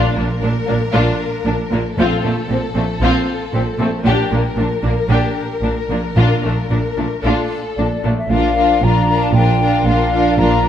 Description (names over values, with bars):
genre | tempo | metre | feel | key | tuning
cinematic, heroic adventure film score | 115 BPM | 4/4 | straight | Bb major | A4 = 440 Hz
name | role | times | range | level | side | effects
warm symphonic violin section | melody | 0.0-10.7 s | A4 to Bb4 | -25 LUFS | left 4 dB | none
rich symphonic violin section | second line | 0.0-10.7 s | A3 to G4 | -22 LUFS | left 5 dB | none
rich symphonic viola section | accompaniment | 0.0-10.7 s | C4 to D4 | -23 LUFS | right 2 dB | none
timpani | percussion | 0.0-2.7, 6.2-6.9 s | Bb2 | -22 LUFS | equal | none
rich symphonic cello section | bass | 0.2-10.7 s | Bb2 | -21 LUFS | right 2 dB | none
rich symphonic double bass section | bass | 0.2-10.7 s | Bb1 | -20 LUFS | right 2 dB | none
hollow concert flute | second line | 7.8-10.7 s | D5 to Bb5 | -18 LUFS | left 3 dB | none
warm trombone section | sustained chords | 8.3-10.7 s | F3 to D4 | -22 LUFS | right 5 dB | none
room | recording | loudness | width
moderate scoring stage reverb, RT60 1.7 s | none | -14 LUFS | side -10 dB against mid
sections
0.0-8.3 A section; 8.3-10.7 B section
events
build-up 0.0-8.3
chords
0.0 Bb; 2.0 F/Bb; 4.1 Gm/Bb; 8.3 Bb